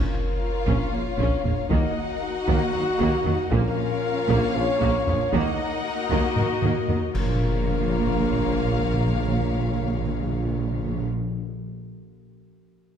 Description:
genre	cinematic, epic orchestral film score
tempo	232 BPM (eighths)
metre	7/8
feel	straight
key	Bb minor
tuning	A4 = 440 Hz
part	warm symphonic violin section	melody	0.0-11.0 s	F5 to Gb5	-34 LUFS	left 6 dB	none
part	warm studio violin section	second line	0.0-11.0 s	Db4 to Db5	-36 LUFS	left 2 dB	none
part	warm symphonic viola section	accompaniment	0.0-11.0 s	F3 to Db4	-32 LUFS	equal	none
part	dark French horn section	sustained chords	0.0-11.0 s	Gb4 to Eb5	-28 LUFS	left 2 dB	none
part	rich symphonic string section	sustained chords	0.0-11.0 s	Bb3 to Eb5	-33 LUFS	left 3 dB	none
part	taiko ensemble	drums	0.1-7.1 s	none	-28 LUFS	left 1 dB	none
part	mellow tuba	bass	0.7-11.0 s	Bb1 to Eb2	-31 LUFS	right 4 dB	none
part	rich symphonic double bass section	bass	0.7-11.0 s	Bb1 to Eb2	-29 LUFS	right 3 dB	none
part	warm symphonic cello section	bass	0.7-11.0 s	Bb2 to Eb3	-31 LUFS	right 4 dB	none
part	timpani	percussion	3.5-4.2, 7.1-11.1 s	Bb2	-30 LUFS	left 2 dB	none
part	clash cymbals and concert bass drum	percussion	7.1-8.1 s	none	-31 LUFS	equal	none
room	moderate scoring stage reverb, RT60 1.9 s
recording	dark, warm production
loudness	-21 LUFS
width	side -8 dB against mid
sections	0.0-7.1 A section; 7.1-10.8 B section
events	drum fill 6.4-7.1; band accent 7.1-7.7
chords	0.0 Bbm; 1.7 Ebm; 3.5 Bbm; 5.3 Ebm; 7.1 Bbm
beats	0.15 0.41 0.67 0.93 1.19 1.44 | 1.70 1.96 2.22 2.48 2.74 3.00 3.25 | 3.51 3.77 4.03 4.29 4.55 4.81 5.07 | 5.33 5.58 5.84 6.10 6.36 6.62 6.88 | 7.14 7.40 7.66 7.92 8.17 8.43 8.69 | 8.95 9.21 9.47 9.73 9.99 10.25 10.51

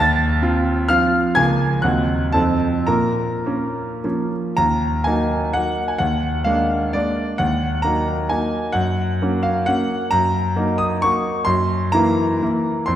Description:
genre	classical, romantic triple-time dance for piano with dotted rhythms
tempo	98-143 BPM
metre	3/4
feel	rubato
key	Bb minor, Eb minor from 4.6 s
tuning	A4 = 438 Hz
part	clear concert grand piano	solo	0.0-13.0 s	Db2 to A6	-17 LUFS	equal	none
room	wet concert hall reverb, RT60 2.0 s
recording	heard from further back in the room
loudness	-17 LUFS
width	side -11 dB against mid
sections	0.0-4.6 A section; 4.6-13.0 B section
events	none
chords	0.0 F7/Eb; 1.4 Bbm/Db; 1.8 Cdim/Eb; 2.4 F7; 2.9 Bbm; 4.6 Ebm; 6.0 Bb7/Eb; 7.4 Ebm; 8.7 Gb; 10.1 Ebm/Gb; 11.5 Gb7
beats	0.42 0.89 | 1.35 1.84 2.35 | 2.88 3.46 4.04 | 4.58 5.07 5.55 | 6.01 6.48 6.96 | 7.40 7.85 8.31 | 8.75 9.21 9.67 | 10.11 10.55 11.01 | 11.46 11.94 12.42 | 12.87

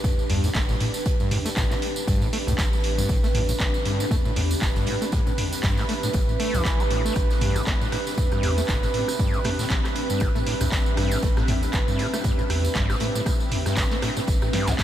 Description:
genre	acid house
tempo	118 BPM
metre	4/4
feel	swing 56% on 16ths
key	A minor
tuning	A4 = 440 Hz
part	warm analog pad	sustained chords	0.0-14.8 s	B4	-31 LUFS	right 6 dB	chorus, sidechain pumping
part	electronic kick drum	drums	0.0-14.8 s	none	-25 LUFS	equal	none
part	oversized low-tuned drum kit	drums	0.0-14.8 s	hi-hat, snare drum	-40 LUFS	right 3 dB	none
part	punchy analog drum machine	drums	0.0-14.8 s	handclaps, hi-hat, rim click, snare drum, toms	-30 LUFS	right 1 dB	none
part	tambourine	percussion	0.0-14.8 s	none	-36 LUFS	right 4 dB	none
part	sub drop	sound effects	0.0-1.1 s	none	barely audible	none	none
part	granular cloud pad	texture	0.0-14.8 s	C4 to E5	-31 LUFS	left 2 dB	built-in reverb, sidechain pumping
part	overdriven acid bass	riff	0.3-14.8 s	G2 to A3	-28 LUFS	left 1 dB	distortion, lush chorus, ping-pong delay
part	warm sub bass	bass	0.3-14.8 s	G1 to A2	-27 LUFS	equal	sidechain pumping
room	light reverb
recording	none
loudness	-21 LUFS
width	side -11 dB against mid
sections	0.0-14.8 A section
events	impact 0.0-1.1; drum fill 14.5-14.8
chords	0.0 Am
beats	0.04 0.55 | 1.06 1.57 2.08 2.58 | 3.09 3.60 4.11 4.62 | 5.13 5.63 6.14 6.65 | 7.16 7.67 8.18 8.69 | 9.19 9.70 10.21 10.72 | 11.23 11.74 12.24 12.75 | 13.26 13.77 14.28 14.79

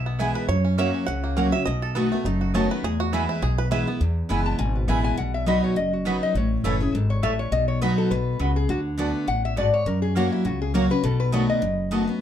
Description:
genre	bluegrass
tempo	205 BPM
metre	4/4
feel	swing 55% on 8ths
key	E major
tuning	A4 = 440 Hz
part	bluegrass banjo	melody	0.0-4.0 s	A3 to F#5	-29 LUFS	right 6 dB	plate reverb
part	picked steel-string acoustic guitar	accompaniment	0.0-12.2 s	E2 to F#4	-24 LUFS	left 1 dB	none
part	upright bass	bass	0.0-12.0 s	F#1 to F#2	-26 LUFS	equal	none
part	mandolin	stabs	0.2-12.0 s	A3 to B5	-29 LUFS	right 5 dB	none
part	lap resonator guitar	melody	4.5-12.2 s	E4 to A5	-27 LUFS	left 4 dB	plate reverb
room	moderate studio ambience, RT60 0.4 s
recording	dark, warm production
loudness	-21 LUFS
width	side -10 dB against mid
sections	0.0-4.0 A section; 4.0-12.2 A section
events	five-string banjo solo 0.0-4.0; resonator guitar played with a steel bar solo 4.0-12.2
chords	0.5 F#; 1.7 B7; 2.8 E; 5.2 B; 6.4 A; 7.5 B; 8.7 D6; 9.9 F#; 11.0 B7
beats	0.20 | 0.49 0.78 1.08 1.37 | 1.66 1.96 2.25 2.54 | 2.84 3.13 3.42 3.71 | 4.01 4.30 4.59 4.89 | 5.18 5.47 5.77 6.06 | 6.35 6.65 6.94 7.23 | 7.53 7.82 8.11 8.40 | 8.70 8.99 9.28 9.58 | 9.87 10.16 10.46 10.75 | 11.04 11.33 11.63 11.92

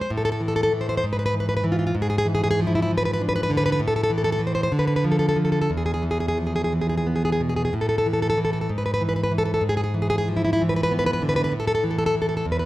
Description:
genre	romantic piece for solo classical guitar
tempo	58-68 BPM (dotted quarters)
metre	6/8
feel	rubato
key	unclear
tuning	A4 = 440 Hz
part	nylon-string guitar	solo	0.0-12.7 s	E2 to C5	-20 LUFS	equal	none
room	moderate recital hall reverb, RT60 1.4 s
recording	none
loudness	-20 LUFS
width	side -16 dB against mid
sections	0.1-12.7 A section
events	none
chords	0.1 A5; 1.0 E/G#; 1.9 E7/G#; 3.8 A5; 4.7 Dm; 5.7 E5; 7.7 A5; 8.7 E/G#; 9.6 E7/G#; 11.5 A5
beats	| 0.11 1.04 | 1.95 2.91 | 3.80 4.72 | 5.70 6.72 | 7.74 8.71 | 9.64 10.62 | 11.53 12.46

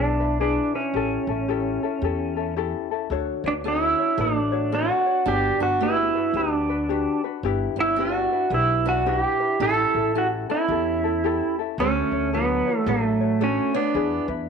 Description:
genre	Hawaiian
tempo	111 BPM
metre	4/4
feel	swing 63% on 8ths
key	D major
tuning	A4 = 440 Hz
part	pedal steel guitar	melody	0.0-14.3 s	A3 to A4	-22 LUFS	right 2 dB	none
part	ukulele	accompaniment	0.0-14.5 s	C#4 to C#5	-28 LUFS	left 13 dB	none
part	upright bass	bass	0.0-14.5 s	G1 to E2	-30 LUFS	equal	transformer saturation
part	fingerpicked steel-string acoustic guitar	second line	3.5-14.3 s	F#3 to E4	-30 LUFS	right 13 dB	none
room	moderate spring reverb, RT60 1.3 s, studio reverb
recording	1960s-style stereo with parts hard left and right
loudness	-20 LUFS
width	side -6 dB against mid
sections	0.0-14.5 A section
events	none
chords	0.0 E7/B; 0.9 A7; 3.1 Dmaj7; 5.3 Gmaj7; 7.4 Em7/G; 9.6 A7; 11.8 Dmaj7; 14.0 E7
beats	0.40 | 0.94 1.48 2.02 2.56 | 3.10 3.65 4.19 4.73 | 5.27 5.81 6.35 6.90 | 7.44 7.98 8.52 9.07 | 9.61 10.15 10.70 11.24 | 11.78 12.32 12.87 13.41 | 13.95

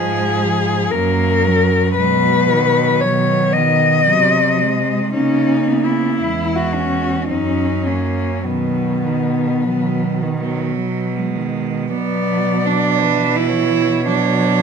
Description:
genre	classical, lyrical piece for cello ensemble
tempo	50-58 BPM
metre	3/4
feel	rubato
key	B major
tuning	A4 = 440 Hz
part	rich cello	melody	0.0-14.6 s	B3 to D#5	-18 LUFS	left 5 dB	none
part	rich cello	second line	0.0-14.6 s	D#3 to E4	-21 LUFS	right 12 dB	none
part	warm cello	accompaniment	0.0-14.6 s	D#3 to E4	-22 LUFS	left 1 dB	none
part	rich cello	bass	0.0-14.6 s	E2 to C#3	-21 LUFS	right 3 dB	none
room	moderate recital hall reverb, RT60 1.4 s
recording	close, detailed microphones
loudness	-14 LUFS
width	side -6 dB against mid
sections	0.0-11.9 A section; 11.9-14.6 B section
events	none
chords	0.0 G#5; 0.9 F#; 2.0 B; 4.1 G#7/B#; 5.1 C#m13; 6.2 C#m/E; 7.3 F#; 8.5 B; 11.9 Bm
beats	0.93 | 1.98 3.02 4.07 | 5.13 6.20 7.29 | 8.45 9.64 10.79 | 11.94 13.02 14.07

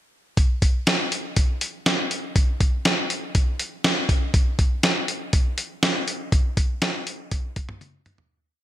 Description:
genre	pop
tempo	121 BPM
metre	4/4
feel	straight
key	none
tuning	none
part	dusty soul sampler-style drum kit	drums	0.4-8.3 s	hi-hat, kick drum, snare drum, toms	-20 LUFS	equal	gated reverb
room	light reverb, digital ambience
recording	bright 1980s-style digital production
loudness	-20 LUFS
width	side -13 dB against mid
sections	0.4-8.3 verse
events	fade-out 6.3-8.3; drum fill 7.8-8.3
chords	none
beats	| 0.37 0.87 1.36 1.86 | 2.36 2.85 3.35 3.84 | 4.34 4.84 5.33 5.83 | 6.32 6.82 7.32 7.81

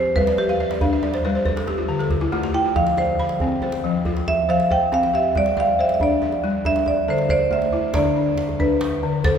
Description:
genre	west african traditional, West African string and xylophone music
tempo	92 BPM (dotted quarters)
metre	12/8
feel	straight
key	unclear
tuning	A4 = 438 Hz
part	marimba with medium hard mallets	melody	0.0-9.4 s	G4 to G5	-21 LUFS	right 2 dB	none
part	balafon	arpeggios	0.0-9.4 s	D3 to B5	-22 LUFS	left 3 dB	none
part	djembe	percussion	0.2-9.4 s	none	-26 LUFS	right 1 dB	none
room	wet cathedral reverb, RT60 7.0 s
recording	recorded in a church or concert hall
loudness	-18 LUFS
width	side -8 dB against mid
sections	0.0-7.9 A section; 7.9-9.4 B section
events	marimba solo 0.0-7.9; balafon fill 0.2-2.8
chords	0.2 G5; 1.5 D5; 2.8 F5; 5.4 G5; 6.6 D5; 7.9 Bmadd11/D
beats	| 0.17 0.82 1.46 2.11 | 2.76 3.41 4.05 4.70 | 5.35 6.00 6.65 7.30 | 7.95 8.60 9.25

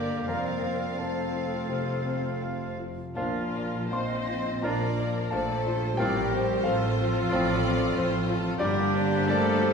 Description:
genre	classical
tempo	76-95 BPM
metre	4/4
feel	rubato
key	unclear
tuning	A4 = 441 Hz
part	dark chamber violin section	melody	0.0-9.7 s	Bb3 to D4	-41 LUFS	left 3 dB	none
part	warm grand piano	melody	0.0-9.7 s	F2 to D6	-29 LUFS	left 2 dB	none
part	hollow small flute group	second line	0.0-9.7 s	G4 to Eb5	-36 LUFS	equal	none
part	rich chamber violin section	second line	0.0-9.7 s	A4 to F5	-36 LUFS	right 1 dB	none
part	warm clarinet	second line	0.0-9.7 s	Bb3 to D4	-38 LUFS	right 2 dB	none
part	warm oboe	second line	0.0-9.7 s	F4 to G4	-37 LUFS	right 1 dB	none
part	mellow bassoon	accompaniment	0.0-9.7 s	D3 to Bb3	-38 LUFS	left 2 dB	none
part	rich chamber viola section	accompaniment	0.0-9.7 s	D4 to C5	-34 LUFS	left 1 dB	none
part	dark French horn section	sustained chords	0.0-9.7 s	D3 to D4	-37 LUFS	left 3 dB	none
part	rich chamber cello section	bass	0.0-9.7 s	D3 to C4	-35 LUFS	right 2 dB	none
part	rich chamber double bass section	bass	0.0-9.7 s	F1 to Bb1	-34 LUFS	right 3 dB	none
room	wet recital hall reverb, RT60 1.7 s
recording	recorded in a church or concert hall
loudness	-25 LUFS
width	side -6 dB against mid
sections	0.0-9.7 A section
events	none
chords	0.3 F; 3.2 Bb; 6.0 F/A; 8.6 Gm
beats	| 0.28 1.00 1.72 2.44 | 3.17 3.93 4.64 5.32 | 5.99 6.65 7.32 7.96 | 8.60 9.29

